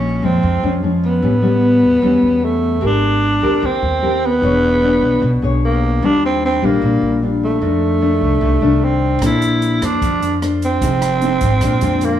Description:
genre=bossa nova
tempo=150 BPM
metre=4/4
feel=straight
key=unclear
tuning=A4 = 440 Hz
part: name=growling tenor saxophone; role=melody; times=0.0-12.2 s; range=A3 to E4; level=-17 LUFS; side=right 2 dB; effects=none
part: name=nylon-string guitar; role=accompaniment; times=0.0-12.2 s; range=F2 to C#5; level=-17 LUFS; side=left 3 dB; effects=none
part: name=upright bass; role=bass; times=0.0-12.2 s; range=E1 to F2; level=-20 LUFS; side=equal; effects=none
part: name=open jazz drum kit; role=drums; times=9.2-12.1 s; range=hi-hat, kick drum, rim click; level=-25 LUFS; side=right 1 dB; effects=none
room=light reverb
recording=studio reverb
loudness=-13 LUFS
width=side -10 dB against mid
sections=0.0-12.2 A section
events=none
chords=0.0 Bbm7; 1.2 A9; 2.8 Abmaj9; 4.4 E6; 6.0 Ebmaj9; 7.6 F6; 9.2 Bbmaj9; 10.8 Fm7; 11.6 Bb7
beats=0.03 0.43 0.83 | 1.23 1.63 2.03 2.43 | 2.83 3.23 3.62 4.02 | 4.42 4.82 5.22 5.62 | 6.02 6.42 6.82 7.22 | 7.62 8.02 8.42 8.82 | 9.22 9.62 10.02 10.42 | 10.81 11.21 11.61 12.01

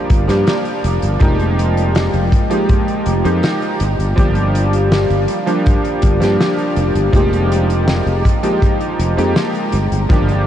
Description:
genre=vaporwave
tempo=81 BPM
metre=4/4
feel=straight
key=F dorian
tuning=A4 = 441 Hz
part: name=clear electric grand piano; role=accompaniment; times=0.0-10.5 s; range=F3 to G4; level=-17 LUFS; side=right 1 dB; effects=analog chorus, vintage 12-bit sampler grit, analog delay
part: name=warbly tape-like pad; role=sustained chords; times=0.0-10.5 s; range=Ab3 to Bb5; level=-23 LUFS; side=left 2 dB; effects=chorus, built-in reverb
part: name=sustaining fretless electric bass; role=bass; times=0.1-10.5 s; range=F1 to G2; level=-16 LUFS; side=equal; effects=tube saturation
part: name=kick drum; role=drums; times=0.1-10.2 s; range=none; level=-15 LUFS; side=equal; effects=vintage 12-bit sampler grit
part: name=loose indie drum kit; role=drums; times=0.1-10.4 s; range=hi-hat, snare drum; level=-24 LUFS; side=left 1 dB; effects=vintage 12-bit sampler grit
room=moderate huge ambient reverb, RT60 8.8 s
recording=dreamy mix soaked in reverb, cassette tape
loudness=-13 LUFS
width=side -11 dB against mid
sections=0.0-10.5 A section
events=none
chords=0.0 Gm7; 1.2 Fm11; 3.8 Gm7; 7.1 Fm11; 9.7 Gm7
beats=0.47 | 1.22 1.96 2.70 3.44 | 4.18 4.92 5.66 6.40 | 7.14 7.88 8.62 9.36 | 10.10

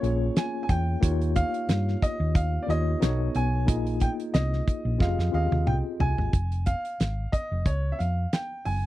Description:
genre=lush 1970s-style soul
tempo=90 BPM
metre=4/4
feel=swing 54% on 16ths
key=F minor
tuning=A4 = 441 Hz
part: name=clear baby grand piano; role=melody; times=0.0-8.9 s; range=Db5 to Ab5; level=-32 LUFS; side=right 1 dB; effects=none
part: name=tine electric piano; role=accompaniment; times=0.0-6.4 s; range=Bb3 to Eb5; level=-31 LUFS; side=left 3 dB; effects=overdrive, fast stereo tremolo
part: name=hollow-body short-scale fingered electric bass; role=bass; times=0.0-8.9 s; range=F1 to G2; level=-26 LUFS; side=equal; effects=none
part: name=damped 70s drum kit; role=drums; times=0.0-8.8 s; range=hi-hat, kick drum, snare drum, toms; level=-25 LUFS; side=equal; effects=none
room=little or no reverb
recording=dry, close 1970s-style studio recording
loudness=-24 LUFS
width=side -15 dB against mid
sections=0.0-6.3 A section; 6.3-8.9 B section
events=drum fill 5.0-6.3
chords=0.0 Bbm7; 1.0 Eb9; 3.0 B9; 3.7 Bb7sus4; 5.0 Fm9; 6.3 Fm; 7.7 Db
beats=0.36 | 1.02 1.69 2.35 3.02 | 3.68 4.34 5.01 5.67 | 6.33 7.00 7.66 8.32

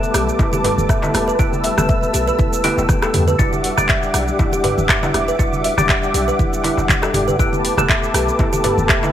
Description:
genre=afro house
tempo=120 BPM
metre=4/4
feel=swing 55% on 16ths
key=unclear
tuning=A4 = 440 Hz
part: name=warm analog pad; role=sustained chords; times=0.0-9.1 s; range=G3 to E6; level=-23 LUFS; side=right 1 dB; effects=chorus, sidechain pumping
part: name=kalimba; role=arpeggios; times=0.0-9.1 s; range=E4 to E5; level=-22 LUFS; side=right 1 dB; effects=sidechain pumping, digital delay
part: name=percussive tonewheel organ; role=stabs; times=0.0-9.1 s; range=G3 to A4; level=-22 LUFS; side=left 3 dB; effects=chorus vibrato, slow rotary speaker, sidechain pumping, digital delay
part: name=warm 808-style bass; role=bass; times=0.0-9.1 s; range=E1 to E2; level=-24 LUFS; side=equal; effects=sidechain pumping
part: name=afro-pop drum kit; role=drums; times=0.0-9.1 s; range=handclaps, hi-hat, rim click, shaker, toms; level=-21 LUFS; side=equal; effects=small room ambience
part: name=congas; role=percussion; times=0.0-9.1 s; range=none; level=-27 LUFS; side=right 2 dB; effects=none
part: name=electronic kick drum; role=drums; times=0.4-9.0 s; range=none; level=-19 LUFS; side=equal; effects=small room ambience
part: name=darbuka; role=percussion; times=0.4-9.1 s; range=none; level=-28 LUFS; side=left 2 dB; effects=none
room=light reverb, digital ambience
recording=none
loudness=-14 LUFS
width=side -10 dB against mid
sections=0.0-9.1 A section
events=none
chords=0.0 Gadd9/E; 3.4 Em9; 7.4 Gadd9/E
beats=0.39 0.89 | 1.39 1.89 2.39 2.89 | 3.39 3.89 4.39 4.89 | 5.39 5.89 6.39 6.89 | 7.39 7.89 8.39 8.89

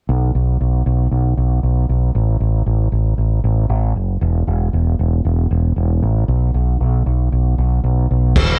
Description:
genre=blues rock power trio and southern rock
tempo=116 BPM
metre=4/4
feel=straight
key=unclear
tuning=A4 = 437 Hz
part: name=growling fingered electric bass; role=bass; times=0.1-8.5 s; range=E1 to B1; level=-17 LUFS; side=equal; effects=overdrive
part: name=vintage drum kit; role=drums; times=8.4-8.5 s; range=crash cymbal, kick drum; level=-15 LUFS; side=equal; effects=none
room=little or no reverb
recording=cassette tape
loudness=-17 LUFS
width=mono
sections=0.1-8.4 A section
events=none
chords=none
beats=| 0.08 0.60 1.12 1.64 | 2.15 2.67 3.19 3.70 | 4.22 4.74 5.26 5.77 | 6.29 6.81 7.33 7.84 | 8.36

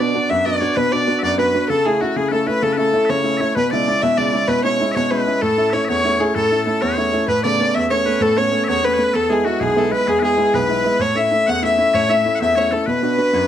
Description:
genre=celtic folk, Celtic slide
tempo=129 BPM (dotted quarters)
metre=12/8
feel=straight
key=unclear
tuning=A4 = 439 Hz
part: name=rich fiddle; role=melody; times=0.0-13.5 s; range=F#4 to F#5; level=-18 LUFS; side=equal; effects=slapback echo
part: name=loud bright bagpipes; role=second line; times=0.0-13.5 s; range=F#4 to F#5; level=-24 LUFS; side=left 5 dB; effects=none
part: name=clear upright piano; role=accompaniment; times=0.0-13.5 s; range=B1 to F#4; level=-20 LUFS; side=equal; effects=none
room=moderate small room ambience, RT60 0.5 s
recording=dark, warm production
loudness=-15 LUFS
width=side -10 dB against mid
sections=0.0-13.5 A section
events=none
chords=0.0 Bm; 1.7 A/C#; 3.6 E6/B; 5.4 A; 7.3 Aadd9; 9.1 E; 11.0 A; 12.9 Bm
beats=0.30 0.77 1.23 | 1.70 2.16 2.63 3.09 | 3.56 4.02 4.49 4.95 | 5.42 5.88 6.35 6.81 | 7.28 7.75 8.21 8.68 | 9.14 9.61 10.07 10.54 | 11.00 11.47 11.94 12.40 | 12.87 13.33

